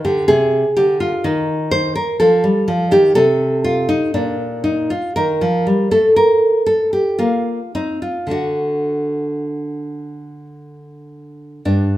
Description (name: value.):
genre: classical, baroque-style dance for nylon-string guitar.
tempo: 51-63 BPM.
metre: 3/4.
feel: rubato.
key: unclear.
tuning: A4 = 441 Hz.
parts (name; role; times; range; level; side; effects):
nylon-string guitar; solo; 0.0-12.0 s; G2 to C5; -14 LUFS; equal; none.
room: moderate large studio reverb, RT60 1.4 s.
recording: band playing live in one room.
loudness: -14 LUFS.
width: side -14 dB against mid.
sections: 0.0-11.7 A section.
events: none.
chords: 0.0 G5; 1.3 N.C.; 2.2 F5; 4.1 N.C.; 5.2 Eb; 8.3 D.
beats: 0.29 1.26 | 2.21 3.17 4.15 | 5.18 6.18 7.20 | 8.32 9.46 10.57 | 11.67.